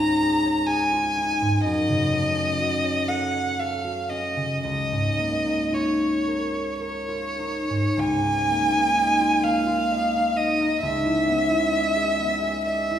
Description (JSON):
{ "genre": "classical, impressionist duo for violin and harp", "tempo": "47-67 BPM", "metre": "3/4", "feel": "rubato", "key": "Db major", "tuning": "A4 = 436 Hz", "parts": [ { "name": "rich violin", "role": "melody", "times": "0.0-13.0 s", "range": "Db5 to Bb5", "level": "-23 LUFS", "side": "equal", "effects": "none" }, { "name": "concert harp", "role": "accompaniment", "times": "0.0-13.0 s", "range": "Db2 to Eb5", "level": "-24 LUFS", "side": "equal", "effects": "none" } ], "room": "wet recital hall reverb, RT60 1.6 s", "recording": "heard from further back in the room", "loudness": "-21 LUFS", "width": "side -10 dB against mid", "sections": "0.0-8.0 A section; 8.0-13.0 B section", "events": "none", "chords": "0.0 Dbadd9; 1.6 Gbm6; 4.6 Db69; 10.8 Emaj7/Db", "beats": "0.67 | 1.64 2.59 3.58 | 4.64 5.73 6.81 | 7.98 8.96 9.91 | 10.82 11.72 12.65" }